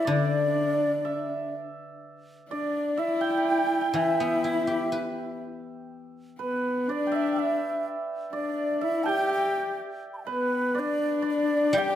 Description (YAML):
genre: chinese traditional, Chinese chamber ensemble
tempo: 62 BPM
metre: 2/4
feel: rubato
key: G gong mode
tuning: A4 = 440 Hz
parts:
  - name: xiao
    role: melody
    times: 0.0-12.0 s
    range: B4 to B5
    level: -29 LUFS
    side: right 1 dB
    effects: none
  - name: hammered dulcimer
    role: second line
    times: 0.0-12.0 s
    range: B4 to G5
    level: -31 LUFS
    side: right 3 dB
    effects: none
  - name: warm horsehead fiddle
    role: second line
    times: 0.0-12.0 s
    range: B3 to G4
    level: -29 LUFS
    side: left 3 dB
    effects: none
  - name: guzheng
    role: accompaniment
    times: 0.1-6.9, 11.7-12.0 s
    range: D3 to B4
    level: -30 LUFS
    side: left 4 dB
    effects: none
room: moderate scoring stage reverb, RT60 1.5 s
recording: none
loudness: -24 LUFS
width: side -11 dB against mid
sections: 0.0-12.0 A section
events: none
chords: none